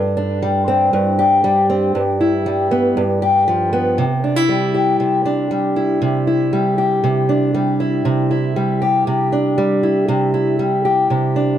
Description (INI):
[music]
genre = folktronica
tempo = 118 BPM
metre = 4/4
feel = straight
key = unclear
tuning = A4 = 440 Hz
[part]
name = fingerpicked old ladder-braced acoustic guitar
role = solo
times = 0.0-11.6 s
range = G2 to G4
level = -14 LUFS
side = equal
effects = none
[sound]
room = moderate studio reverb, RT60 0.6 s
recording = none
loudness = -14 LUFS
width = side -10 dB against mid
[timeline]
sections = 0.0-4.0 A section; 4.0-11.6 B section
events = none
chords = 0.0 Gsus4; 1.9 Em/G; 3.0 G7; 4.0 Cadd9